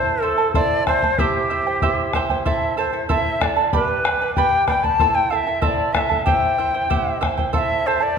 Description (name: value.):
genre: andean folk, Andean ensemble.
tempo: 94 BPM.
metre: 2/4.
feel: straight.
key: A minor.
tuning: A4 = 442 Hz.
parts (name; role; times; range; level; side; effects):
large quena; melody; 0.0-8.2 s; G4 to A5; -20 LUFS; left 2 dB; none.
charango; accompaniment; 0.0-8.2 s; E4 to B5; -22 LUFS; right 6 dB; none.
bombo; percussion; 0.5-7.7 s; none; -24 LUFS; left 2 dB; none.
room: wet concert hall reverb, RT60 1.9 s.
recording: recorded in a church or concert hall.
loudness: -17 LUFS.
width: side -6 dB against mid.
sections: 0.0-8.2 A section.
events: none.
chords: 0.0 Am; 1.2 C; 2.5 Am; 3.7 G; 5.0 Am; 6.3 C; 7.5 Am.